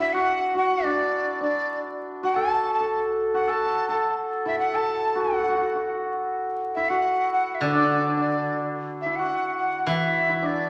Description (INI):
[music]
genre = chinese traditional, Chinese chamber ensemble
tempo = 106 BPM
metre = 4/4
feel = rubato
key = D gong mode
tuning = A4 = 440 Hz
[part]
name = breathy bright large dizi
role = melody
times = 0.0-10.7 s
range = D5 to A5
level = -27 LUFS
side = equal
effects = none
[part]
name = hammered dulcimer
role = second line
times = 0.0-10.7 s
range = D4 to A4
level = -28 LUFS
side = equal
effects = none
[part]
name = steel-string zither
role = accompaniment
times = 7.6-10.7 s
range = D3 to E3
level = -30 LUFS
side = equal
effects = none
[sound]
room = wet recital hall reverb, RT60 1.6 s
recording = vinyl crackle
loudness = -24 LUFS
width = mono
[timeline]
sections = 0.0-10.7 A section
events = none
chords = none